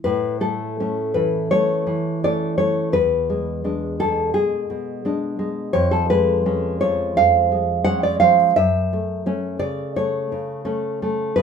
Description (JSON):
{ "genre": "romantic piece for solo classical guitar", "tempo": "85 BPM", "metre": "4/4", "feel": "rubato", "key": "A major", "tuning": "A4 = 439 Hz", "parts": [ { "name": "nylon-string guitar", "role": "solo", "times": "0.0-11.4 s", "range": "E2 to F#5", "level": "-18 LUFS", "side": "equal", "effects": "none" } ], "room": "light reverb", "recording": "minimal, uncompressed stereo recording", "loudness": "-18 LUFS", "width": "side -6 dB against mid", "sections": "0.0-11.4 A section", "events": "none", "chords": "0.0 A; 2.9 E7; 5.8 C#7/E#; 8.6 F#m", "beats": "| 0.05 0.78 1.51 2.22 | 2.92 3.64 4.34 5.05 | 5.75 6.47 7.18 7.88 | 8.57 9.27 9.97 10.68 | 11.36" }